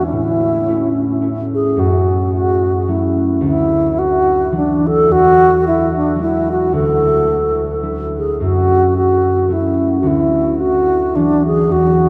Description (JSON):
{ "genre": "celtic folk, Celtic waltz", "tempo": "109 BPM", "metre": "3/4", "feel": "swing 56% on 8ths", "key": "unclear", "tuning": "A4 = 440 Hz", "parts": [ { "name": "mellow wooden-headed alto flute", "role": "melody", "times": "0.0-12.1 s", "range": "D4 to A4", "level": "-16 LUFS", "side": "equal", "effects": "none" }, { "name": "concert harp", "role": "accompaniment", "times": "0.0-12.1 s", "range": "D2 to F#4", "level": "-20 LUFS", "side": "equal", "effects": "none" } ], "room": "wet huge ambient reverb, RT60 6.9 s", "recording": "in a vast, echoing space", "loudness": "-15 LUFS", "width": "mono", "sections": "0.0-1.8 A section; 1.8-12.1 B section", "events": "none", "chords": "0.1 A; 1.8 F#m; 3.4 Dadd9; 5.1 Eadd9; 6.7 Dadd9; 8.4 F#m; 10.0 Dadd9" }